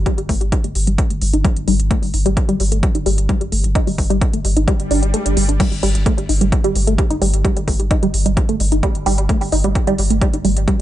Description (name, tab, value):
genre	driving peak-time techno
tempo	130 BPM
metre	4/4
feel	straight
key	unclear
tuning	A4 = 444 Hz
part	warm sub bass	bass	0.0-10.7 s	G1	-19 LUFS	equal	sidechain pumping, low-pass filter
part	tight sequenced synth	riff	0.1-10.7 s	G3 to Eb4	-20 LUFS	right 1 dB	chorus, cassette tape, sidechain pumping, tape echo
part	electronic kick drum	drums	0.1-10.8 s	none	-18 LUFS	equal	small room ambience
part	techno drum kit	drums	0.1-10.8 s	crash cymbal, hi-hat	-25 LUFS	equal	small room ambience
part	swell	sound effects	4.8-5.6 s	none	-26 LUFS	equal	none
room	little or no reverb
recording	echo-heavy mix, nothing above 10.8 kHz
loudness	-14 LUFS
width	side -13 dB against mid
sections	0.0-10.8 A section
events	filter sweep on synth arpeggio sound 0.0-10.8; swell 4.8-5.6; kick drops out 5.1-5.6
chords	0.0 G5